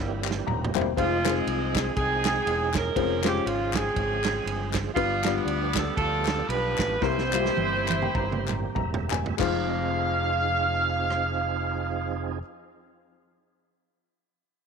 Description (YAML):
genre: uptempo gospel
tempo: 90-121 BPM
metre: 4/4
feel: swing 57% on 8ths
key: F minor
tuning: A4 = 438 Hz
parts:
  - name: warm saxophone section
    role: melody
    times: 0.0-12.4 s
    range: G3 to F5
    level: -27 LUFS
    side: right 2 dB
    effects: none
  - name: tonewheel organ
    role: sustained chords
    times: 0.0-12.4 s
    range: Db3 to E5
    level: -34 LUFS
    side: right 14 dB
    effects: fast rotary speaker, overdrive, chorus vibrato
  - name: fingered electric bass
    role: bass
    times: 0.0-12.4 s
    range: Eb1 to D2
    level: -31 LUFS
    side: left 1 dB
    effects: none
  - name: group handclap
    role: percussion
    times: 0.2-9.7 s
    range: none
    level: -33 LUFS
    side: left 17 dB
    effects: none
  - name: warm soul drum kit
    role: drums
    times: 0.3-11.2 s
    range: crash cymbal, kick drum, ride cymbal, rim click, snare drum, toms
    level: -31 LUFS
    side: right 4 dB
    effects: none
  - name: warm upright piano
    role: accompaniment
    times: 0.5-12.4 s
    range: F2 to Bb5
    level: -30 LUFS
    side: left 15 dB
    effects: none
room: light reverb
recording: 1960s-style stereo with parts hard left and right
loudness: -24 LUFS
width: side -6 dB against mid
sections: 1.0-9.4 A section; 9.4-14.7 B section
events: drum fill 0.0-1.0, 7.0-9.4; upright piano fill 0.2-1.0, 7.6-9.4; slowing down 5.0-9.4; tonewheel organ fill 8.4-9.4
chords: 0.0 C7; 1.0 Fm7; 3.0 Dbmaj7/F; 5.0 G7; 7.0 C7; 9.4 Fm7